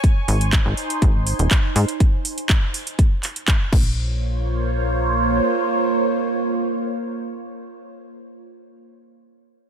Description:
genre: melodic techno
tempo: 122 BPM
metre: 4/4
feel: straight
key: Bb minor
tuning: A4 = 440 Hz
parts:
  - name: evolving wavetable pad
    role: sustained chords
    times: 0.0-7.9 s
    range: Bb3 to C6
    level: -23 LUFS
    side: right 2 dB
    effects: phaser, built-in reverb, sidechain pumping
  - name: electronic kick drum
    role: drums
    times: 0.0-3.8 s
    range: none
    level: -17 LUFS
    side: equal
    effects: none
  - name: house drum kit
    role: drums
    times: 0.0-3.8 s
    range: crash cymbal, handclaps, hi-hat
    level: -25 LUFS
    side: right 1 dB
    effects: none
  - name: tight sequencer bass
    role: bass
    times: 0.3-5.4 s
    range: Eb1 to Ab2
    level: -21 LUFS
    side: equal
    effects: tube saturation, sidechain pumping
room: little or no reverb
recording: none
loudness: -18 LUFS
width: side -8 dB against mid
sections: 0.0-4.0 A section; 4.0-7.9 B section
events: drop 0.0-4.0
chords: 0.0 Ab; 3.7 Bbm

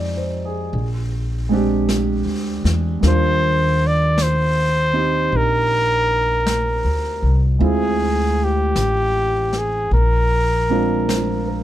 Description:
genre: jazz ballad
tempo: 52 BPM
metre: 4/4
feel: swing 68% on 8ths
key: unclear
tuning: A4 = 440 Hz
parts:
  - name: warm concert grand piano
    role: accompaniment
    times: 0.0-11.6 s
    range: G3 to Eb5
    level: -23 LUFS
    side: right 2 dB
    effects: none
  - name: upright bass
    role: bass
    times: 0.0-11.6 s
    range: A1 to F2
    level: -20 LUFS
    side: equal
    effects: none
  - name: jazz brush drum kit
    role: drums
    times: 0.7-11.6 s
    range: brushed snare drum, hi-hat, snare drum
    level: -30 LUFS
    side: left 2 dB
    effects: none
  - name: mellow trumpet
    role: melody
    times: 3.1-11.6 s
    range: G4 to D5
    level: -19 LUFS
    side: equal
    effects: none
room: little or no reverb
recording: close, detailed microphones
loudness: -16 LUFS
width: side -13 dB against mid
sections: 0.0-11.6 A section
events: none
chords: 0.0 Fm7; 0.7 Bb13; 3.0 Ebmaj9; 7.6 Dm7b5; 9.9 Bb7

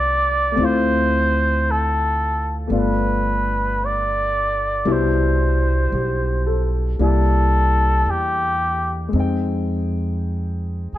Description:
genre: jazz ballad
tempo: 56 BPM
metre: 4/4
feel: swing 69% on 8ths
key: C major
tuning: A4 = 440 Hz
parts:
  - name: trumpet with cup mute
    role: melody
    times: 0.0-11.0 s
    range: G4 to D5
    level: -20 LUFS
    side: equal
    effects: plate reverb
  - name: clear upright piano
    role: accompaniment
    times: 0.0-11.0 s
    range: B2 to G5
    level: -24 LUFS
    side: left 4 dB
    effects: none
  - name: upright bass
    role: bass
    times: 0.0-11.0 s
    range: G1 to F2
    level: -21 LUFS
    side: right 1 dB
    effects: none
room: light reverb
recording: dark, warm production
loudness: -17 LUFS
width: side -14 dB against mid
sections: 0.0-11.0 A section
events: none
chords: 0.0 Fmaj9; 0.6 Dm7; 2.7 G7; 4.9 Cmaj9; 7.0 C7; 9.1 Fm7

